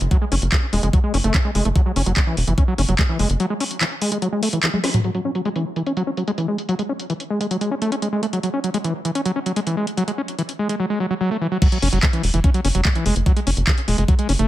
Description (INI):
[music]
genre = psychedelic trance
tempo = 146 BPM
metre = 4/4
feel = straight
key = F# minor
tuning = A4 = 441 Hz
[part]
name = tight sequencer bass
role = bass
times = 0.0-3.4, 11.8-14.5 s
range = E1 to F#1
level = -19 LUFS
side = equal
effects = none
[part]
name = drum and bass drum kit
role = drums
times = 0.0-14.5 s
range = crash cymbal, handclaps, hi-hat, snare drum, toms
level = -24 LUFS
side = equal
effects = low-pass filter on hats, low-pass filter on snare, low-pass filter on toms, low-pass filter on cymbals, low-pass filter on room
[part]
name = overdriven acid bass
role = riff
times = 0.1-14.5 s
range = E3 to C#4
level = -22 LUFS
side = equal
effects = distortion, auto-pan, sidechain pumping, digital delay
[part]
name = electronic kick drum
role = drums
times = 0.1-3.1, 11.6-14.2 s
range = none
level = -17 LUFS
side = equal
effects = overdrive
[sound]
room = light reverb, digital ambience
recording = none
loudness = -18 LUFS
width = side -14 dB against mid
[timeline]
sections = 0.0-5.0 A section; 5.0-11.6 B section; 11.6-14.5 C section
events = filter sweep on acid bass 0.0-5.0, 5.0-11.6; break 3.4-5.0; drum fill 4.7-5.0; band accent 4.8; filter sweep on drum 5.0-11.6; drop 11.6-14.5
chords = 0.0 F#5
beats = | 0.11 0.52 0.93 1.34 | 1.75 2.17 2.58 2.99 | 3.40 3.81 4.22 4.63 | 5.04 5.45 5.87 6.28 | 6.69 7.10 7.51 7.92 | 8.33 8.74 9.15 9.56 | 9.97 10.39 10.80 11.21 | 11.62 12.03 12.44 12.85 | 13.26 13.67 14.08